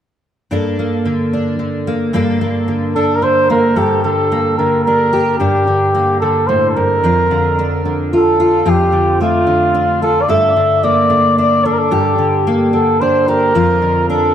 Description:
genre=folk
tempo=110 BPM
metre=3/4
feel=straight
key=unclear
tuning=A4 = 440 Hz
part: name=fingerpicked steel-string acoustic guitar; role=accompaniment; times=0.5-14.3 s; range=F2 to A4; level=-15 LUFS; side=equal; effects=analog chorus
part: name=mellow trumpet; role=melody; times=3.0-14.3 s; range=F4 to E5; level=-13 LUFS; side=equal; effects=diffuse ambient delay
room=wet plate reverb, RT60 2.5 s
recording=dreamy mix soaked in reverb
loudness=-12 LUFS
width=side -9 dB against mid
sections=0.5-3.8 A section; 3.8-14.3 B section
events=none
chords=0.5 Gmadd9; 7.0 Dm/F; 10.3 Gmadd9; 13.5 Dm/F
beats=| 0.52 1.06 1.60 | 2.15 2.69 3.23 | 3.77 4.32 4.86 | 5.40 5.95 6.49 | 7.03 7.57 8.12 | 8.66 9.20 9.75 | 10.29 10.83 11.38 | 11.92 12.46 13.01 | 13.55 14.09

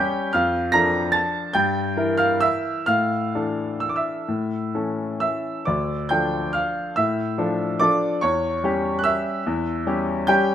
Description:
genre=classical, piano waltz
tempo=123-155 BPM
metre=3/4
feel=rubato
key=D minor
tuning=A4 = 441 Hz
part: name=bright grand piano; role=solo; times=0.0-10.5 s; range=D2 to Bb6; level=-20 LUFS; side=equal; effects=none
room=light reverb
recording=close, detailed microphones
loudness=-20 LUFS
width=side -10 dB against mid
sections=0.0-10.5 A section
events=none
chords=0.4 Dm/F; 1.6 Edim/G; 2.9 Asus4; 4.3 A; 5.7 Dm; 8.2 C#dim/E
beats=| 0.35 0.74 1.14 | 1.55 1.97 2.42 | 2.88 3.34 3.82 | 4.30 4.75 5.22 | 5.68 6.12 6.55 | 6.97 7.38 7.81 | 8.22 8.63 9.05 | 9.46 9.86 10.28

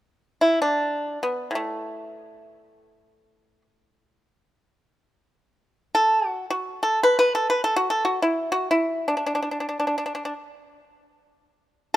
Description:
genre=chinese traditional, Chinese solo plucked strings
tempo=free time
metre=none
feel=none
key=unclear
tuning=A4 = 439 Hz
part: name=pipa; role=solo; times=0.4-12.0 s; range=A2 to B4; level=-21 LUFS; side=equal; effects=none
room=light reverb, small room ambience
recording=rough home demo mix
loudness=-21 LUFS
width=side -14 dB against mid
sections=0.0-12.0 A section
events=none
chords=none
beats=free time

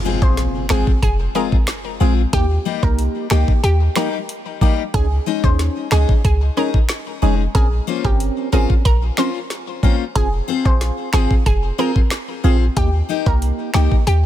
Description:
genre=dancehall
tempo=92 BPM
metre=4/4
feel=straight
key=F minor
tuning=A4 = 442 Hz
part: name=picked steel-string acoustic guitar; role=arpeggios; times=0.0-13.9 s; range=G3 to C5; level=-24 LUFS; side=left 9 dB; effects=ping-pong delay
part: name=impact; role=sound effects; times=0.0-2.3 s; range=none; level=-27 LUFS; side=right 1 dB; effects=none
part: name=analog pluck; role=melody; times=0.2-14.2 s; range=G4 to C5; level=-25 LUFS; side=right 1 dB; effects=chorus, ping-pong delay
part: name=percussive organ stab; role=accompaniment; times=0.2-14.0 s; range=Bb3 to Bb4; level=-25 LUFS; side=right 2 dB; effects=chorus, phaser
part: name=clean 808-style bass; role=bass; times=0.2-14.3 s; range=F1 to Eb2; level=-16 LUFS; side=equal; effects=none
part: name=island pop drum kit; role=drums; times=0.2-14.2 s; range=finger snaps, hi-hat, kick drum, snare drum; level=-18 LUFS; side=equal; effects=none
room=little or no reverb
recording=dense, heavily limited modern master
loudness=-15 LUFS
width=side -12 dB against mid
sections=0.0-14.3 A section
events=impact 0.0-2.3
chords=0.0 Fm; 2.3 Eb; 4.9 Dbsus2; 7.5 Bbmadd9; 10.2 Fm; 12.8 Eb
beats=0.38 1.03 1.68 | 2.33 2.98 3.64 4.29 | 4.94 5.59 6.25 6.90 | 7.55 8.20 8.85 9.51 | 10.16 10.81 11.46 12.11 | 12.77 13.42 14.07

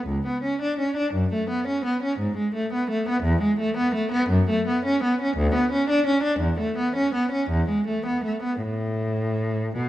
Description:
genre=classical, baroque-style suite movement for unaccompanied cello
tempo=56 BPM (dotted quarters)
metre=6/8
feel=uneven beats, rubato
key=unclear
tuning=A4 = 442 Hz
part: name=rich cello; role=solo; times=0.0-9.9 s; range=C#2 to D4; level=-22 LUFS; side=equal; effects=none
room=moderate recital hall reverb, RT60 1.5 s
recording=none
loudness=-22 LUFS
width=side -14 dB against mid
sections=0.0-9.9 A section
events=none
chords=none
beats=| 0.06 1.13 | 2.19 3.22 | 4.30 5.36 | 6.41 7.49 | 8.60 9.74

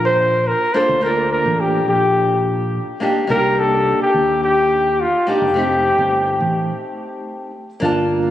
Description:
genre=sunset chillout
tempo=106 BPM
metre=4/4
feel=straight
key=unclear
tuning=A4 = 440 Hz
part: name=nylon-string guitar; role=accompaniment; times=0.0-8.3 s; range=A3 to A5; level=-21 LUFS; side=equal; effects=auto-pan, vintage 12-bit sampler grit
part: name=fingered electric bass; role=bass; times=0.0-8.3 s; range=F1 to Eb2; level=-24 LUFS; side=equal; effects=none
part: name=breathy flugelhorn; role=melody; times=0.1-6.7 s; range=F4 to C5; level=-16 LUFS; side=left 1 dB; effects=digital delay
room=moderate lush hall reverb, RT60 2.2 s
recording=recorded on a phone in the room, studio ambience, compression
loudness=-15 LUFS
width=side -12 dB against mid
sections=0.0-7.8 A section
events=break 6.7-7.8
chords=0.0 Gm7; 3.0 Cm9; 5.6 F9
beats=0.47 | 1.03 1.60 2.16 2.73 | 3.30 3.86 4.43 4.99 | 5.56 6.13 6.69 7.26 | 7.82

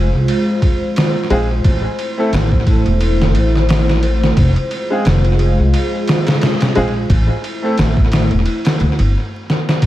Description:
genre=trip hop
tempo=88 BPM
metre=4/4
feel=swing 56% on 16ths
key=unclear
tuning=A4 = 440 Hz
part: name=dark analog pad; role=sustained chords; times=0.0-9.9 s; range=Ab3 to C5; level=-20 LUFS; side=equal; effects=chorus, vintage 12-bit sampler grit
part: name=upright bass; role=bass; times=0.0-9.9 s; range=E1 to D2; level=-15 LUFS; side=equal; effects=none
part: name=trip hop sampler-style drum kit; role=drums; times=0.3-9.9 s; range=kick drum, ride cymbal, snare drum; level=-17 LUFS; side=equal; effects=tape echo
part: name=bright upright piano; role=accompaniment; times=1.3-7.7 s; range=Ab3 to A4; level=-21 LUFS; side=equal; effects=tremolo, vintage 12-bit sampler grit, tape echo
room=little or no reverb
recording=echo-heavy mix, vinyl crackle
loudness=-12 LUFS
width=side -14 dB against mid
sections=0.0-9.8 A section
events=stop 9.1-9.8; drum fill 9.5-9.8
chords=0.0 Fm; 1.6 Am; 4.4 Fm; 7.1 Am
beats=0.28 0.96 | 1.64 2.33 3.01 3.69 | 4.37 5.05 5.73 6.42 | 7.10 7.78 8.46 9.14 | 9.82

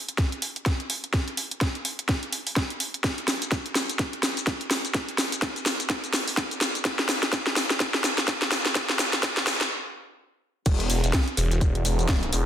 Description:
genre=bass house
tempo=126 BPM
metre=4/4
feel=swing 59% on 16ths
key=unclear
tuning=A4 = 440 Hz
part: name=garage drum kit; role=drums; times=0.1-12.4 s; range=crash cymbal, hi-hat, shaker, snare drum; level=-25 LUFS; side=equal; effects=overdrive
part: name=electronic kick drum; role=drums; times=0.2-12.2 s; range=none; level=-25 LUFS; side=equal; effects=overdrive
part: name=phased detuned saw bass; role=bass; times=10.7-12.5 s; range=E1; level=-23 LUFS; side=equal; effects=phaser, overdrive, sidechain pumping
part: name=dusty soul sampler-style drum kit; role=drums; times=10.7-12.5 s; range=hi-hat, snare drum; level=-41 LUFS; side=left 1 dB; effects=none
room=moderate digital room reverb, RT60 0.9 s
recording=dense, heavily limited modern master, high-pass filter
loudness=-23 LUFS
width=side -10 dB against mid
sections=0.0-10.7 A section; 10.7-12.5 B section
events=build-up 0.0-10.7; drum fill 0.0-9.7; stop 9.7-10.7; drop 10.7-12.5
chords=none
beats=0.18 0.66 | 1.14 1.61 2.09 2.56 | 3.04 3.52 3.99 4.47 | 4.95 5.42 5.90 6.37 | 6.85 7.33 7.80 8.28 | 8.76 9.23 9.71 10.18 | 10.66 11.14 11.61 12.09

